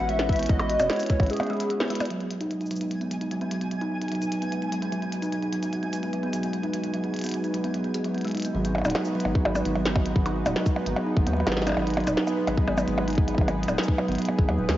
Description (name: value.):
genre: IDM.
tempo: 149 BPM.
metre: 4/4.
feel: straight.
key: G# minor.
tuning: A4 = 440 Hz.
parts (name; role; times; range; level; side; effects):
warbly nostalgic lead; melody; 0.0-1.9 s; G#4 to F#5; -28 LUFS; equal; phaser, ensemble chorus, cassette tape, tape echo.
warm analog pad; sustained chords; 0.0-14.8 s; G#3 to B4; -32 LUFS; equal; chorus, cassette tape.
kalimba; arpeggios; 0.0-14.8 s; F#3 to G#4; -28 LUFS; right 1 dB; low-pass filter, cassette tape, tape echo.
round analog bass; bass; 0.0-1.3, 8.5-14.8 s; D#1 to D#2; -30 LUFS; equal; none.
glitchy drum kit; drums; 0.1-14.8 s; cabasa, hi-hat, percussion blips, snare drum; -29 LUFS; equal; small room reverb, cassette tape.
electronic kick drum; drums; 0.3-1.3, 9.4-14.5 s; none; -22 LUFS; equal; small room reverb, cassette tape.
twinkling granular texture; texture; 2.6-8.6 s; G#5; -39 LUFS; right 1 dB; built-in reverb, sidechain pumping, cassette tape.
room: moderate lush hall reverb, RT60 2.1 s.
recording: home recording on cassette, nothing above 7.5 kHz.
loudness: -23 LUFS.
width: side -14 dB against mid.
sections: 0.0-2.1 A section; 2.1-8.5 B section; 8.5-14.8 A section.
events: break 1.3-2.1; filter sweep on kalimba 2.1-8.5.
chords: 0.0 Amaj9; 2.1 G#m7.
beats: 0.09 | 0.49 0.90 1.30 1.70 | 2.10 2.51 2.91 3.31 | 3.71 4.12 4.52 4.92 | 5.33 5.73 6.13 6.53 | 6.94 7.34 7.74 8.14 | 8.55 8.95 9.35 9.76 | 10.16 10.56 10.96 11.37 | 11.77 12.17 12.57 12.98 | 13.38 13.78 14.19 14.59.